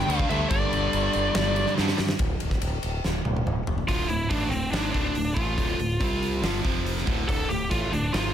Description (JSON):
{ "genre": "hard rock", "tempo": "142 BPM", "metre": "4/4", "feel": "straight", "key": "D minor", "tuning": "A4 = 440 Hz", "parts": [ { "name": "biting lead guitar", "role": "melody", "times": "0.0-8.3 s", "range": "C4 to G5", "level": "-28 LUFS", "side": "equal", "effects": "overdrive" }, { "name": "distorted electric guitar", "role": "riff", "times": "0.0-8.3 s", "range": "D2 to C4", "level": "-28 LUFS", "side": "equal", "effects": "overdrive" }, { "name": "growling fingered electric bass", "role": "bass", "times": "0.1-8.3 s", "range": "D1 to G2", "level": "-29 LUFS", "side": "equal", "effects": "overdrive" }, { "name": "huge arena drum kit", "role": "drums", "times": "0.1-8.2 s", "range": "crash cymbal, hi-hat, kick drum, ride cymbal, snare drum, toms", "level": "-28 LUFS", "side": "equal", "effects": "none" } ], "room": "little or no reverb", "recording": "none", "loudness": "-23 LUFS", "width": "side -10 dB against mid", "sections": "0.0-2.2 A section; 2.2-3.9 B section; 3.9-8.3 C section", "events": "drum fill 1.8-2.2, 3.0-3.9", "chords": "0.0 G5; 2.2 N.C.; 3.9 Dm; 6.0 C5; 6.4 Dm; 6.6 F5; 7.1 D5" }